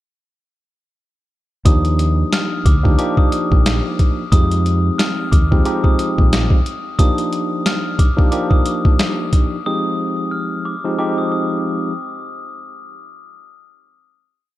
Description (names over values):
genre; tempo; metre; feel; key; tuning
hip hop, boom-bap hip-hop; 90 BPM; 4/4; swing 56% on 16ths; F dorian; A4 = 441 Hz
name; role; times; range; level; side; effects
glockenspiel with rubber mallets; melody; 1.7-11.8 s; D6 to F6; -25 LUFS; left 3 dB; high-pass filter, low-pass filter, analog delay
barky tine electric piano; accompaniment; 1.7-11.9 s; F3 to G4; -21 LUFS; equal; medium stereo tremolo, cassette tape, high-pass filter, low-pass filter
deep dub fingered electric bass; bass; 1.7-6.5 s; Bb1 to F2; -17 LUFS; equal; none
boom bap sampler-style drum kit; drums; 1.7-9.5 s; hi-hat, kick drum, snare drum; -14 LUFS; equal; none
room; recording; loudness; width
light reverb, digital ambience; none; -14 LUFS; side -15 dB against mid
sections
1.7-12.3 verse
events
break 7.0-12.3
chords
1.7 Ebmaj9; 4.3 Fm7; 7.0 Ebmaj9; 9.7 Fm7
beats
| 1.65 2.32 2.99 3.65 | 4.32 4.99 5.65 6.32 | 6.99 7.65 8.32 8.99 | 9.65 10.32 10.99 11.65